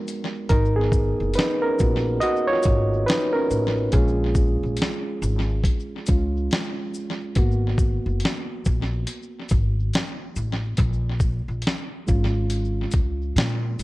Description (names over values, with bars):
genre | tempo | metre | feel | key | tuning
lo-fi hip hop | 70 BPM | 4/4 | swing 62% on 16ths | G# dorian | A4 = 440 Hz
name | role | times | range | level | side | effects
overdriven reed electric piano | accompaniment | 0.0-13.8 s | G#3 to D#5 | -25 LUFS | right 1 dB | low-pass filter
dusty soul sampler-style drum kit | drums | 0.1-13.8 s | hi-hat, kick drum, shaker, snare drum | -23 LUFS | equal | tape echo
upright bass | bass | 0.5-13.8 s | F#1 to A#2 | -24 LUFS | equal | none
room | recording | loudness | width
digital ambience | echo-heavy mix, cassette tape, faint mains hum | -20 LUFS | side -19 dB against mid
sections
0.5-13.8 A section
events
reed electric piano solo 0.5-13.8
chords
0.0 G#m7; 0.5 G#m9; 3.9 A#m7; 7.4 G#m9; 10.8 A#m7